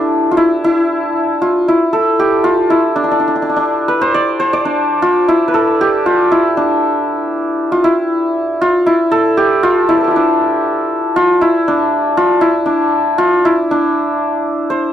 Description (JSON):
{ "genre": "indian classical", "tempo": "117 BPM", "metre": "7/4", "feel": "straight", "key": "D raga kafi", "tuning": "A4 = 440 Hz", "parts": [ { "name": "santur", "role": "solo", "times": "0.0-14.9 s", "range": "D4 to D5", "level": "-11 LUFS", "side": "equal", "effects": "none" } ], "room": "light reverb", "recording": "dry, close 1970s-style studio recording", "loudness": "-11 LUFS", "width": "side -10 dB against mid", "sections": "0.0-13.7 A section; 13.7-14.9 B section", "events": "none", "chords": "none" }